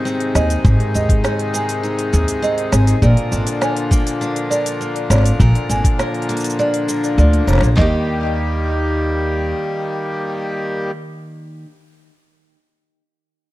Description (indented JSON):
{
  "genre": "folktronica",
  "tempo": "101 BPM",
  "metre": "4/4",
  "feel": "straight",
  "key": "Eb major",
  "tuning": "A4 = 440 Hz",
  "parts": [
    { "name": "accordion", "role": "sustained chords", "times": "0.0-10.9 s", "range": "C3 to G4", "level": "-24 LUFS", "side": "left 1 dB", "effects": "vintage 12-bit sampler grit" },
    { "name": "picked steel-string acoustic guitar", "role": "arpeggios", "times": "0.0-11.7 s", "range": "Ab2 to Bb4", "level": "-22 LUFS", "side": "equal", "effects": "ping-pong delay" },
    { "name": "organic electronic drum kit", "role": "drums", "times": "0.1-7.8 s", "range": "hi-hat, shaker, snare drum", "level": "-24 LUFS", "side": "equal", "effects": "none" },
    { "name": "marimba with soft mallets", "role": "second line", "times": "0.4-8.1 s", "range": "D5 to Ab5", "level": "-24 LUFS", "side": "right 1 dB", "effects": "ping-pong delay" },
    { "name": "upright bass", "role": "bass", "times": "0.4-9.5 s", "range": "F1 to Eb2", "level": "-15 LUFS", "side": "equal", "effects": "none" },
    { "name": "lo-fi sampler-style drum kit", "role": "drums", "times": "0.6-7.9 s", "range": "handclaps, kick drum, snare drum", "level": "-15 LUFS", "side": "equal", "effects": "none" }
  ],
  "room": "small room ambience",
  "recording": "dark, warm production",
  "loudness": "-15 LUFS",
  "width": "side -16 dB against mid",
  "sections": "0.0-7.8 A section; 7.8-10.2 B section",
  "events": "none",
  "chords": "0.0 Ab; 3.0 Bb; 7.8 Eb",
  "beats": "0.06 | 0.65 1.24 1.84 2.43 | 3.02 3.62 4.21 4.81 | 5.40 6.00 6.59 7.18 | 7.78 8.37 8.97 9.56"
}